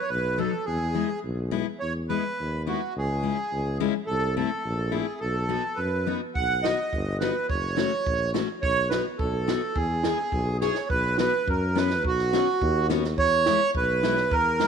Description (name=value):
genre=alpine folk, alpine dance band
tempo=106 BPM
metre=2/4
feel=straight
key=E major, B major from 10.9 s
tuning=A4 = 439 Hz
part: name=accordion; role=melody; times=0.0-14.7 s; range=F#4 to F#5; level=-26 LUFS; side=right 4 dB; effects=tape echo
part: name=mellow tuba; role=bass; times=0.1-14.7 s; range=F#1 to F#2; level=-29 LUFS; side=equal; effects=none
part: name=fingerpicked steel-string acoustic guitar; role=accompaniment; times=0.4-14.7 s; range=F#3 to G#4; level=-30 LUFS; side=left 12 dB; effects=none
part: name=compact cocktail drum kit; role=drums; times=6.4-14.7 s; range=kick drum, snare drum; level=-31 LUFS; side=right 3 dB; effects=none
room=light reverb, small room reverb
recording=1960s-style stereo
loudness=-23 LUFS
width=side -7 dB against mid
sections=0.0-10.9 A section; 10.9-14.7 B section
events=drum fill 10.6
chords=0.1 B7; 0.7 E; 3.0 C#m; 4.1 Am/C; 5.2 B; 7.5 F#m; 8.6 B7; 9.8 E; 10.9 Bsus2; 13.2 E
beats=0.10 | 0.67 1.24 | 1.81 2.39 | 2.96 3.52 | 4.08 4.64 | 5.21 5.78 | 6.36 6.93 | 7.50 8.07 | 8.63 9.20 | 9.76 10.33 | 10.90 11.48 | 12.05 12.61 | 13.18 13.74 | 14.31